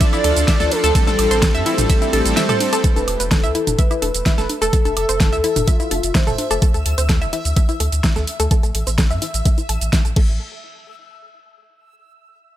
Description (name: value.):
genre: progressive house.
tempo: 127 BPM.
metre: 4/4.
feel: straight.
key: A minor.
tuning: A4 = 440 Hz.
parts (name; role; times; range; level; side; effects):
warm velvety synth lead; melody; 0.0-6.6 s; F4 to D5; -23 LUFS; equal; chorus, sidechain pumping, tape echo.
dark studio violin section; second line; 0.0-2.4 s; A4 to D5; -28 LUFS; left 1 dB; none.
shimmering ambient pad; sustained chords; 0.0-2.8 s; A3 to C5; -27 LUFS; left 2 dB; chorus, built-in reverb, sidechain pumping.
analog pluck; arpeggios; 0.0-10.4 s; E4 to A5; -24 LUFS; left 1 dB; chorus, sidechain pumping, tape echo.
soft supersaw; stabs; 0.0-2.8 s; F3 to A4; -23 LUFS; right 2 dB; sidechain pumping, tape echo.
electronic kick drum; drums; 0.0-10.3 s; none; -16 LUFS; equal; overdrive.
pop drum kit; drums; 0.0-10.3 s; crash cymbal, hi-hat, ride cymbal, shaker, snare drum; -23 LUFS; right 1 dB; overdrive.
electronic woodblock, congas and toms; percussion; 0.1-6.6 s; none; -27 LUFS; right 2 dB; sidechain pumping on perc, sidechain pumping on toms.
saturated sub bass; bass; 0.2-10.4 s; D1 to A2; -22 LUFS; equal; sidechain pumping.
backwards swelling texture; texture; 3.7-10.4 s; E5 to E6; -33 LUFS; equal; built-in reverb, sidechain pumping.
room: digital ambience.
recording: none.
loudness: -15 LUFS.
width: side -12 dB against mid.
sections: 0.0-2.8 A section; 2.8-10.4 B section; 10.4-12.3 C section.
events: drop 0.0-2.8; kick drops out 2.4-2.8; filter sweep on synth arpeggio sound 2.8-10.4.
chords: 0.0 Dm; 1.0 Am7; 2.8 Esus4; 4.7 F; 6.6 D5; 8.5 A5; 10.4 N.C..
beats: 0.01 0.48 | 0.95 1.42 1.90 2.37 | 2.84 3.31 3.79 4.26 | 4.73 5.20 5.68 6.15 | 6.62 7.09 7.57 8.04 | 8.51 8.98 9.46 9.93 | 10.40.